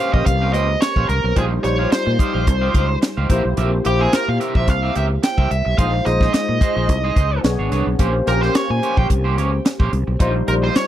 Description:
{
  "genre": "polished 1980s jazz-funk pop",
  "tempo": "109 BPM",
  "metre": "4/4",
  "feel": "swing 54% on 16ths",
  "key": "Bb dorian",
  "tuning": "A4 = 440 Hz",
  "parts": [
    { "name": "nasal lead guitar with a parked wah", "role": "melody", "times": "0.0-10.9 s", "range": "G4 to Ab5", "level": "-23 LUFS", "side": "right 2 dB", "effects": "overdrive, tape echo" },
    { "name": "barky tine electric piano", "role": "accompaniment", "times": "0.0-10.9 s", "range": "G3 to C#5", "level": "-23 LUFS", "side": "left 2 dB", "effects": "ensemble chorus" },
    { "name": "electric guitar at the edge of break-up", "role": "riff", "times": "0.0-10.8 s", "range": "G3 to G5", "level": "-26 LUFS", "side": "right 5 dB", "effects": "wide subtle chorus" },
    { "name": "tight funk drum kit", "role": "drums", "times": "0.0-10.9 s", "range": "hi-hat, kick drum, snare drum", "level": "-17 LUFS", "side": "equal", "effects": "none" },
    { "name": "fretless electric bass", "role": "bass", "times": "0.1-10.8 s", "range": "G#1 to Bb2", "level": "-20 LUFS", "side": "equal", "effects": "analog chorus" }
  ],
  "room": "little or no reverb",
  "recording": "dry, close 1970s-style studio recording",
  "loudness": "-16 LUFS",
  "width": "side -12 dB against mid",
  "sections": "0.0-10.9 A section",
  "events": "none",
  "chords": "0.0 Bbm69; 1.4 Dbmaj9#11/Bb; 3.3 C7/Bb; 5.8 Fm7/Bb; 7.4 Bm69; 8.0 Bbm69; 10.2 Dbmaj9#11/Bb (rootless)"
}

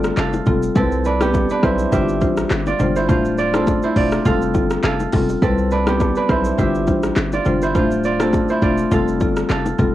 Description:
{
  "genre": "afrobeats",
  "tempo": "103 BPM",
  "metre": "4/4",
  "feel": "swing 55% on 16ths",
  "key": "C major",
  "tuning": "A4 = 440 Hz",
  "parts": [
    { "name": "marimba with medium hard mallets", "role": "accompaniment", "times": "0.0-9.9 s", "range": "G3 to C5", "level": "-20 LUFS", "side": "left 2 dB", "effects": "cassette tape" },
    { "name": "kora", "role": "riff", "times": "0.0-9.9 s", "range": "B3 to F5", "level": "-22 LUFS", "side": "right 4 dB", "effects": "cassette tape, analog delay" },
    { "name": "hard-hitting 808-style bass", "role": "bass", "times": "0.0-9.9 s", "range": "D1 to C2", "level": "-23 LUFS", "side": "equal", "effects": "none" },
    { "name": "deep house drum kit", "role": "drums", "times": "0.0-9.9 s", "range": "handclaps, hi-hat, kick drum, rim click, shaker", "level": "-22 LUFS", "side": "equal", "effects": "overdrive, cassette tape" },
    { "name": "bongos and congas", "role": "percussion", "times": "0.2-9.9 s", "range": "none", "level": "-25 LUFS", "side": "left 2 dB", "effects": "none" }
  ],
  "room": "light reverb",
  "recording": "home recording on cassette",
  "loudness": "-15 LUFS",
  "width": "side -14 dB against mid",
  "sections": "0.0-9.9 A section",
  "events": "none",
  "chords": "0.0 Fadd9; 0.8 Cmaj7; 1.9 G7sus4; 3.1 Dm7; 4.3 Fadd9; 5.4 Cmaj7; 6.6 G7sus4; 7.8 Dm7; 8.9 Fadd9"
}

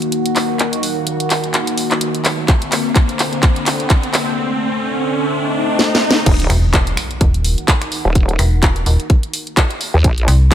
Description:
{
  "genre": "bass house",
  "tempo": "127 BPM",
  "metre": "4/4",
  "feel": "swing 57% on 16ths",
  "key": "unclear",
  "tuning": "A4 = 439 Hz",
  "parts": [
    { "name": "sweeping resonant pad", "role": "sustained chords", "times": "0.0-10.5 s", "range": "D3 to Gb5", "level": "-21 LUFS", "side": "left 1 dB", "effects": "chorus, sidechain pumping" },
    { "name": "garage drum kit", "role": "drums", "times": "0.0-10.5 s", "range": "crash cymbal, finger snaps, handclaps, hi-hat, snare drum", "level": "-18 LUFS", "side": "equal", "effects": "none" },
    { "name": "riser, swell and impact", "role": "sound effects", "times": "0.8-8.2 s", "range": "none", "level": "-23 LUFS", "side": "equal", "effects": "none" },
    { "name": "electronic kick drum", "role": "drums", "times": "2.5-10.5 s", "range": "none", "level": "-13 LUFS", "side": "equal", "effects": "none" },
    { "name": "vowel-sweep wobble bass", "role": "bass", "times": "6.3-10.3 s", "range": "Eb1 to Eb2", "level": "-15 LUFS", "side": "equal", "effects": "chorus, overdrive, sidechain pumping" },
    { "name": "metallic FM bass", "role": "bass", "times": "6.5-10.5 s", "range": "Eb1 to C2", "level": "-13 LUFS", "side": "equal", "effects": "tube saturation, sidechain pumping" }
  ],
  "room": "light reverb, digital ambience",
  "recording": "none",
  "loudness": "-13 LUFS",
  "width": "side -11 dB against mid",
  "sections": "0.0-6.3 A section; 6.3-10.5 B section",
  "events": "build-up 0.0-6.3; drum fill 0.0-4.4, 5.8-6.3; riser 0.8-6.3; swell 5.3-6.3; drop 6.3-10.5; impact 6.3-8.2",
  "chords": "0.0 Ebm; 2.5 Bbadd9; 6.3 Ebm"
}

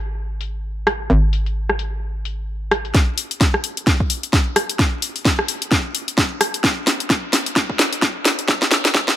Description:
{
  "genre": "bass house",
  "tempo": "130 BPM",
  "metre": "4/4",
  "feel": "swing 58% on 16ths",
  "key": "unclear",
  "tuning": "A4 = 440 Hz",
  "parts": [
    { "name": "hollow knocking FM bass", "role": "bass", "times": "0.0-2.9 s", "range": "Ab1", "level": "-21 LUFS", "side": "equal", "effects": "overdrive, sidechain pumping" },
    { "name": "house drum kit", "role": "drums", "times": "0.4-9.2 s", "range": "hi-hat, rim click, snare drum", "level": "-18 LUFS", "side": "equal", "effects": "overdrive, low-pass filter on snare, low-pass filter on hats" },
    { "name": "electronic kick drum", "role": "drums", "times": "2.9-9.1 s", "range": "none", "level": "-18 LUFS", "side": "equal", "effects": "overdrive" }
  ],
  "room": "light reverb",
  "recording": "high-pass filter",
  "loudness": "-17 LUFS",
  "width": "side -12 dB against mid",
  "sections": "0.0-2.9 A section; 2.9-9.2 B section",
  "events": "build-up 2.9-9.2; drum fill 2.9-9.2; filter sweep 2.9-9.2",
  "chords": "none"
}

